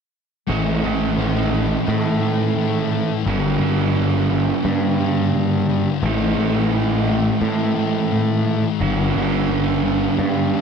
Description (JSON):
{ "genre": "rock", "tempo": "87 BPM", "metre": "4/4", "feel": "straight", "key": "A mixolydian", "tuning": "A4 = 440 Hz", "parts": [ { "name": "overdriven electric guitar", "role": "riff", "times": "0.5-10.6 s", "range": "G2 to E4", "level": "-22 LUFS", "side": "right 12 dB", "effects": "reverse reverb" }, { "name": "thick fuzz guitar", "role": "riff", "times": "0.5-10.6 s", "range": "G2 to A3", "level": "-22 LUFS", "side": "left 10 dB", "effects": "distortion, analog chorus" }, { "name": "fuzz picked electric bass", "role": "bass", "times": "0.5-10.6 s", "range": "G1 to A2", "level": "-21 LUFS", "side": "equal", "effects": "overdrive" } ], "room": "light reverb", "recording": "dark, warm production", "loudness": "-17 LUFS", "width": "side -6 dB against mid", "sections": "0.5-10.6 A section", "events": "none", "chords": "0.5 A; 3.3 G; 6.0 A; 8.8 G" }